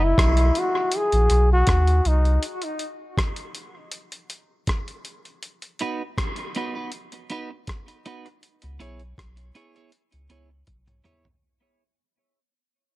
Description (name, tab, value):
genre	dub reggae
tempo	80 BPM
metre	4/4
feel	straight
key	unclear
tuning	A4 = 438 Hz
part	clear trombone	melody	0.0-2.4 s	D#4 to G#4	-23 LUFS	left 1 dB	tape echo
part	warm sub bass	bass	0.0-2.4, 8.6-11.0 s	F#1 to D#2	-19 LUFS	equal	none
part	dusty soul sampler-style drum kit	drums	0.2-11.4 s	hi-hat, kick drum, rim click, toms	-26 LUFS	equal	tape echo
part	clean electric guitar	accompaniment	5.8-11.3 s	B3 to C#5	-33 LUFS	right 3 dB	wide subtle chorus, high-pass filter, tape echo
room	light reverb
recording	none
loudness	-20 LUFS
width	side -19 dB against mid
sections	0.0-11.4 A section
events	break 0.0-11.4; fade-out 0.0-11.4; drum fill 10.7-11.4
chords	0.0 G#m7; 2.4 N.C.; 5.4 B; 8.4 C#m7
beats	0.18 0.93 1.68 | 2.43 3.18 3.93 4.68 | 5.43 6.18 6.93 7.68 | 8.43 9.18 9.93 10.68